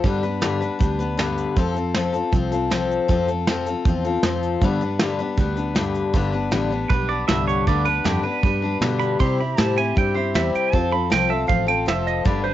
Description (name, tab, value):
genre	honky-tonk and classic country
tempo	157 BPM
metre	4/4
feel	straight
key	G mixolydian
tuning	A4 = 439 Hz
part	picked steel-string acoustic guitar	accompaniment	0.0-12.5 s	G2 to B4	-22 LUFS	left 5 dB	cassette tape
part	fingered electric bass	bass	0.0-12.5 s	F1 to C3	-26 LUFS	right 1 dB	none
part	soft brush drum kit	drums	0.0-12.3 s	hi-hat, kick drum, snare drum	-22 LUFS	right 1 dB	none
part	pedal steel guitar	second line	6.9-12.5 s	G4 to C6	-23 LUFS	right 8 dB	cassette tape
room	moderate studio reverb, RT60 0.6 s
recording	home recording on cassette, nothing above 7.7 kHz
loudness	-19 LUFS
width	side -12 dB against mid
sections	0.0-6.1 A section; 6.1-12.5 B section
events	pedal steel guitar solo 6.1-12.5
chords	0.0 G; 1.6 F; 4.6 G; 9.2 C; 10.7 F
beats	| 0.04 0.42 0.80 1.18 | 1.56 1.95 2.33 2.71 | 3.09 3.47 3.85 4.24 | 4.62 5.00 5.38 5.76 | 6.14 6.53 6.91 7.29 | 7.67 8.06 8.44 8.82 | 9.20 9.59 9.97 10.35 | 10.73 11.11 11.49 11.88 | 12.26